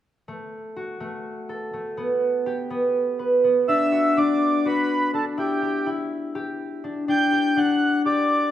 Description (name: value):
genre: contemporary instrumental, chamber music in an uneven meter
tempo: 247 BPM (eighths)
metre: 7/8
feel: straight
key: unclear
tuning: A4 = 440 Hz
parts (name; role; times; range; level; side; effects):
- concert harp; arpeggios; 0.3-8.5 s; A3 to B4; -22 LUFS; left 1 dB; none
- mellow accordion; melody; 3.7-8.5 s; G4 to G5; -22 LUFS; right 2 dB; none
room: wet recital hall reverb, RT60 1.5 s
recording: none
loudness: -20 LUFS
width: side -12 dB against mid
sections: 0.3-3.7 A section; 3.7-8.5 B section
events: none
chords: 0.3 F#m/A; 2.0 G; 3.7 D; 5.4 Em; 7.1 G5